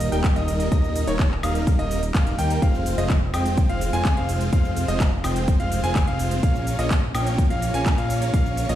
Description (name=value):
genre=EDM, festival progressive house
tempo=126 BPM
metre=4/4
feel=straight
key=unclear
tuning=A4 = 439 Hz
part: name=clear concert grand piano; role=arpeggios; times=0.0-8.8 s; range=Db5 to Ab5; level=-29 LUFS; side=equal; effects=sidechain pumping, dub echo
part: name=big supersaw lead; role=riff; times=0.0-8.8 s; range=G3 to Ab5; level=-27 LUFS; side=right 1 dB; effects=sidechain pumping, dub echo
part: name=fat analog bass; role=bass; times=0.0-8.8 s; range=Eb1 to Eb2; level=-25 LUFS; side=equal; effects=sidechain pumping
part: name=big-room dance drum kit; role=drums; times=0.0-8.8 s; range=cabasa, handclaps, hi-hat, woodblock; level=-32 LUFS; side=equal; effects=none
part: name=electronic kick drum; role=drums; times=0.2-8.4 s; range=none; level=-20 LUFS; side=equal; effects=overdrive
room=light reverb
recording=played on a big sound system in a bare room, stone room reverb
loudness=-19 LUFS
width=side -12 dB against mid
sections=0.0-8.8 A section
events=none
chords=0.0 Eb; 2.6 Fm; 6.4 Bbm